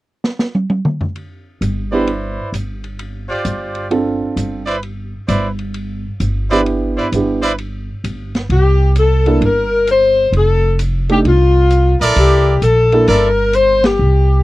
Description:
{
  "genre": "jazz, big band swing",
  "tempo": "131 BPM",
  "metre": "4/4",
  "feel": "swing 66% on 8ths",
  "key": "C major, C mixolydian from 8.5 s",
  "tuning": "A4 = 444 Hz",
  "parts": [
    { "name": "vintage drum kit", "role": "drums", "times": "0.2-13.9 s", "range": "hi-hat, ride cymbal, snare drum, toms", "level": "-21 LUFS", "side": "right 1 dB", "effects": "none" },
    { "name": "upright bass", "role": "bass", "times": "1.6-14.4 s", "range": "F1 to C2", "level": "-16 LUFS", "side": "equal", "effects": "none" },
    { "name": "warm grand piano", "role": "accompaniment", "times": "1.9-13.1 s", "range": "A3 to A4", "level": "-16 LUFS", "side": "right 3 dB", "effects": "none" },
    { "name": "brilliant trumpet section", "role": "stabs", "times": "1.9-7.5, 12.0-13.3 s", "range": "E4 to D5", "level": "-17 LUFS", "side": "right 2 dB", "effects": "none" },
    { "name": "warm saxophone section", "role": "melody", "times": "8.5-14.4 s", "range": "F4 to C5", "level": "-13 LUFS", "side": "left 3 dB", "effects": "none" }
  ],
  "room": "little or no reverb",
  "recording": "dry, close 1970s-style studio recording",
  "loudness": "-12 LUFS",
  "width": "side -17 dB against mid",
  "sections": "0.0-1.2 A section; 1.2-8.5 B section; 8.5-14.4 C section",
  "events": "drum fill 0.2-1.2; band accent 13.8",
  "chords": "0.0 N.C.; 1.2 Cmaj9/G; 3.0 G7sus4; 4.8 Cmaj9/G; 8.5 C7(no3); 10.3 F6; 12.2 C13",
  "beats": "0.23 0.69 | 1.15 1.61 2.07 2.53 | 2.99 3.45 3.91 4.37 | 4.83 5.29 5.75 6.20 | 6.66 7.12 7.58 8.04 | 8.50 8.96 9.41 9.87 | 10.33 10.79 11.25 11.70 | 12.16 12.62 13.08 13.54 | 13.99"
}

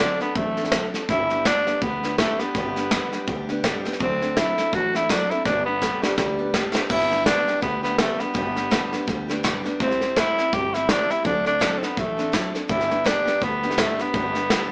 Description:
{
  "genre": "rockabilly",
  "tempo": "166 BPM",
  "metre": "4/4",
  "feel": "swing 58% on 8ths",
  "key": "G major",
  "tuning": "A4 = 440 Hz",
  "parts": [
    { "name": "raspy tenor saxophone", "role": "melody", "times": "0.0-14.7 s", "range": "G3 to G4", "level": "-26 LUFS", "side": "equal", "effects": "none" },
    { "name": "picked steel-string acoustic guitar", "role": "accompaniment", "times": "0.0-14.7 s", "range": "G2 to A4", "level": "-31 LUFS", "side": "equal", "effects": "none" },
    { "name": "upright bass", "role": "bass", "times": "0.0-14.5 s", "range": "G1 to D2", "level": "-35 LUFS", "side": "equal", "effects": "none" },
    { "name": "soft brush drum kit", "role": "drums", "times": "0.2-14.6 s", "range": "crash cymbal, hi-hat, kick drum, snare drum", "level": "-27 LUFS", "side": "equal", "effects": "none" }
  ],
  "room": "light reverb",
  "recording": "band playing live in one room, small speaker sound",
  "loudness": "-23 LUFS",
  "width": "mono",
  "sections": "0.0-6.9 A section; 6.9-14.7 A section",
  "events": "drum fill 5.5-6.9",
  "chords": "0.0 D7; 1.1 G; 4.0 D7; 5.5 G; 9.8 C; 11.2 D7; 12.7 G",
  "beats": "0.36 0.72 | 1.09 1.45 1.82 2.18 | 2.55 2.91 3.27 3.64 | 4.00 4.37 4.73 5.09 | 5.45 5.82 6.18 6.54 | 6.90 7.27 7.63 7.99 | 8.35 8.71 9.08 9.44 | 9.80 10.16 10.53 10.89 | 11.25 11.61 11.97 12.34 | 12.70 13.06 13.42 13.78 | 14.14 14.51"
}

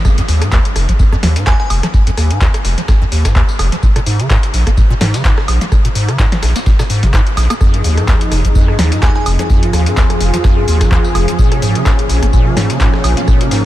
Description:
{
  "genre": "acid house",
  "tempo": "127 BPM",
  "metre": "4/4",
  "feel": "swing 55% on 16ths",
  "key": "F minor",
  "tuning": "A4 = 441 Hz",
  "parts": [
    { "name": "acid bass, square", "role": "riff", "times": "0.0-13.7 s", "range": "F1 to Bb3", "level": "-15 LUFS", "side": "equal", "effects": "tube saturation, analog chorus, sidechain pumping" },
    { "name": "dusty soul sampler-style drum kit", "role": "drums", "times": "0.0-13.6 s", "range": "hi-hat, snare drum, tambourine", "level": "-29 LUFS", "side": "left 2 dB", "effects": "high-pass filter on perc, high-pass filter on snare, high-pass filter on hats, high-pass filter on room" },
    { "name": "electro analog drum machine", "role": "drums", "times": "0.0-13.6 s", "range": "handclaps, hi-hat, rim click, snare drum, woodblock", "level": "-19 LUFS", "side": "equal", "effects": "none" },
    { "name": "electronic kick drum", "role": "drums", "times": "0.0-13.4 s", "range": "none", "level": "-12 LUFS", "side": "equal", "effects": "none" },
    { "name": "glassy synth bell", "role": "melody", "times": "1.5-1.7, 9.0-9.2 s", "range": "Ab5", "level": "-28 LUFS", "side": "right 2 dB", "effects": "chorus, phaser, vintage 12-bit sampler grit, diffuse ambient delay" },
    { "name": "warm analog pad", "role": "sustained chords", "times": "7.6-13.7 s", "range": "F2 to Bb4", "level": "-19 LUFS", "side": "equal", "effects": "chorus, sidechain pumping" }
  ],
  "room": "light reverb",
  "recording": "none",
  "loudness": "-10 LUFS",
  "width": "side -14 dB against mid",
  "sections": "0.0-13.7 A section",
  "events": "drop 0.0-13.7",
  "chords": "0.0 Fm7; 3.8 Bbm7; 7.6 Fm7; 11.4 Bbm7",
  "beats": "| 0.05 0.52 0.99 1.47 | 1.94 2.41 2.88 3.35 | 3.83 4.30 4.77 5.25 | 5.72 6.19 6.66 7.13 | 7.61 8.08 8.55 9.03 | 9.50 9.97 10.44 10.91 | 11.39 11.86 12.33 12.80 | 13.28"
}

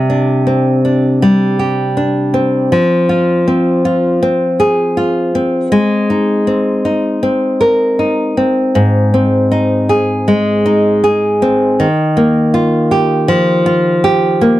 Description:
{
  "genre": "pop",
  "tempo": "80 BPM",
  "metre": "4/4",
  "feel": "straight",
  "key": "unclear",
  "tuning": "A4 = 439 Hz",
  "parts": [
    { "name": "nylon-string guitar", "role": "solo", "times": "0.0-14.6 s", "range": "Ab2 to Bb4", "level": "-10 LUFS", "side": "equal", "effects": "none" }
  ],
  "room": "light reverb",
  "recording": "dry, close 1970s-style studio recording",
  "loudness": "-10 LUFS",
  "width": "side -15 dB against mid",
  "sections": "0.0-8.8 A section; 8.8-14.6 B section",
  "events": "none",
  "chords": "0.0 Csus2; 2.7 Fm; 5.7 Abadd9; 8.8 Ab; 11.8 Ebadd9",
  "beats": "0.47 1.22 1.97 | 2.72 3.47 4.22 4.97 | 5.72 6.47 7.22 7.99 | 8.76 9.52 10.28 11.04 | 11.79 12.54 13.29 14.04"
}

